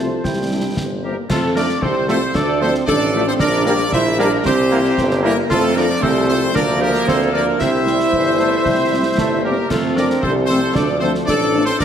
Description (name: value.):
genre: military-style march for wind band.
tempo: 114 BPM.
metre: 2/4.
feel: straight.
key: F major.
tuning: A4 = 440 Hz.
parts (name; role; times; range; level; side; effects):
clear trumpet section; melody; 0.0-11.8 s; A4 to E5; -22 LUFS; equal; none.
clear woodwind section; second line; 0.0-11.8 s; E4 to A5; -22 LUFS; left 2 dB; none.
mellow euphonium; second line; 0.0-11.8 s; A3 to F4; -22 LUFS; right 3 dB; none.
dark French horn section; accompaniment; 0.0-11.6 s; F3 to G4; -26 LUFS; left 4 dB; none.
warm trombone section; sustained chords; 0.0-11.8 s; E3 to C4; -24 LUFS; right 2 dB; none.
warm tuba; bass; 0.0-11.8 s; G1 to F2; -20 LUFS; right 1 dB; none.
concert snare drum, concert bass drum and clash cymbals; drums; 0.2-11.8 s; none; -25 LUFS; left 1 dB; none.
room: wet scoring stage reverb, RT60 1.5 s.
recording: heavily compressed radio sound.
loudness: -14 LUFS.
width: side -8 dB against mid.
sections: 0.0-1.3 A section; 1.3-11.8 B section.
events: none.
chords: 0.2 C; 1.3 F; 2.3 Dm; 3.4 Gm/Bb; 4.5 C7; 5.5 F; 6.6 Bb/D; 7.6 C; 9.7 F; 10.8 Dm.